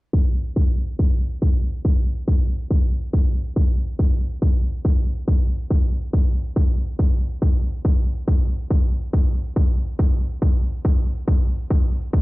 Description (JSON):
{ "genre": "uplifting trance", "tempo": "140 BPM", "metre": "4/4", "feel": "straight", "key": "none", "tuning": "none", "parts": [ { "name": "electronic kick drum", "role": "drums", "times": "0.1-12.2 s", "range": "none", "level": "-18 LUFS", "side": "equal", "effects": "overdrive" }, { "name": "electronic hi-hat", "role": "drums", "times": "0.3-12.0 s", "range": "none", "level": "-55 LUFS", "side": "right 2 dB", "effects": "overdrive" } ], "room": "little or no reverb", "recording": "played on a big sound system in a bare room, large studio reverb, low-pass filter", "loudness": "-18 LUFS", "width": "side -20 dB against mid", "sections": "0.1-12.2 A section", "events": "filter sweep 0.1-12.2", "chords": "none", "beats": "| 0.13 0.56 0.99 1.42 | 1.85 2.28 2.71 3.13 | 3.56 3.99 4.42 4.85 | 5.28 5.71 6.13 6.56 | 6.99 7.42 7.85 8.28 | 8.71 9.13 9.56 9.99 | 10.42 10.85 11.28 11.71 | 12.13" }